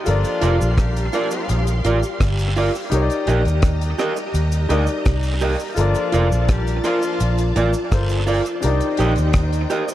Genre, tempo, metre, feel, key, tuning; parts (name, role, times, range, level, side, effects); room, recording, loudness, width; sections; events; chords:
lovers rock reggae; 84 BPM; 4/4; straight; G minor; A4 = 436 Hz
string machine, full ensemble; second line; 0.0-9.9 s; Eb4 to C6; -28 LUFS; equal; ensemble chorus
warm grand piano; accompaniment; 0.0-9.9 s; D4 to D5; -26 LUFS; left 3 dB
warm horn section; second line; 0.1-7.5 s; F3 to G4; -27 LUFS; left 3 dB
vintage muted fingered electric bass; bass; 0.1-9.6 s; F1 to Eb2; -19 LUFS; equal
deep reggae drum kit; drums; 0.1-9.9 s; hi-hat, kick drum, rim click; -23 LUFS; equal; dub echo
cabasa and guiro; percussion; 0.1-9.9 s; -37 LUFS; right 4 dB; dub echo
electric guitar through a small old amp; stabs; 0.4-9.9 s; F4 to Eb5; -24 LUFS; right 3 dB; dub echo
small room reverb; dark, warm production; -17 LUFS; side -13 dB against mid
0.0-9.9 A section
0.1 Gm7; 2.9 Cm7; 5.8 Gm7; 8.6 Cm7